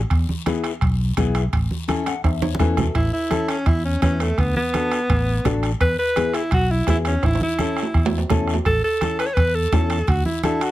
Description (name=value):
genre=latin, cumbia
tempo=168 BPM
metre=4/4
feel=straight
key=A major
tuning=A4 = 440 Hz
part: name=fingered electric bass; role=bass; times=0.0-10.2 s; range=A1 to E2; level=-22 LUFS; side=equal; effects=none
part: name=bombo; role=percussion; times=0.1-10.7 s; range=none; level=-23 LUFS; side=right 1 dB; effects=none
part: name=guiro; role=percussion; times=0.1-10.7 s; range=none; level=-38 LUFS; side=left 8 dB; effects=none
part: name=timbales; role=percussion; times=0.1-10.7 s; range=none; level=-29 LUFS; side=right 5 dB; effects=none
part: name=congas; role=percussion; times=0.3-10.6 s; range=none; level=-27 LUFS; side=right 1 dB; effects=none
part: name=nylon-string guitar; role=accompaniment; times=0.5-10.7 s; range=B3 to F#5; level=-24 LUFS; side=left 5 dB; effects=none
part: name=bright alto saxophone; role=melody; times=3.0-10.7 s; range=A3 to C#5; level=-22 LUFS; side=equal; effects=none
room=little or no reverb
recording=close, detailed microphones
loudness=-18 LUFS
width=side -15 dB against mid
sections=0.0-3.0 A section; 3.0-10.7 A section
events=nylon-string guitar fill 1.9-3.0; drum fill 2.2-3.0, 7.2-8.7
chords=0.1 E; 1.5 A; 4.4 D; 5.8 E; 7.2 A; 10.1 D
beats=| 0.11 0.46 0.82 1.18 | 1.53 1.89 2.25 2.60 | 2.96 3.31 3.67 4.03 | 4.38 4.74 5.10 5.45 | 5.81 6.17 6.52 6.88 | 7.23 7.59 7.95 8.30 | 8.66 9.01 9.37 9.72 | 10.08 10.43